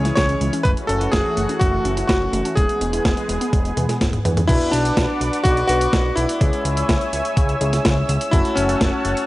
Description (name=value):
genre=italo disco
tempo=125 BPM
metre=4/4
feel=straight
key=B dorian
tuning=A4 = 442 Hz
part: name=bright electric grand piano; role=melody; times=0.0-9.2 s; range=C#4 to C#5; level=-22 LUFS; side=equal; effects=analog delay
part: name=lush unison pad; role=sustained chords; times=0.0-9.3 s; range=E3 to E6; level=-26 LUFS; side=equal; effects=chorus
part: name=warbly dusty pluck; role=arpeggios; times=0.0-4.5 s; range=G#3 to B4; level=-29 LUFS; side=right 1 dB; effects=chorus, analog delay
part: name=fat analog bass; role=bass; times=0.0-9.1 s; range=E1 to E2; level=-23 LUFS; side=equal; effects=none
part: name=clean 12-bit digital drum machine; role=drums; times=0.1-9.3 s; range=crash cymbal, hi-hat, snare drum, toms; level=-24 LUFS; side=equal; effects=none
part: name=electronic kick drum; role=drums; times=0.2-8.9 s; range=none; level=-20 LUFS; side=equal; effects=none
part: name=dark concert grand piano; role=stabs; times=4.5-9.3 s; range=G#3 to B4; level=-26 LUFS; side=left 1 dB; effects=none
room=digital ambience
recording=dry, gritty hardware recording, vinyl crackle, nothing above 11.0 kHz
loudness=-16 LUFS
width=side -18 dB against mid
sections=0.0-4.5 A section; 4.5-9.3 B section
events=drum fill 3.8-4.5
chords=0.0 C#m; 0.7 F#m7; 2.6 E; 4.5 Bm; 6.4 C#m; 8.3 F#m7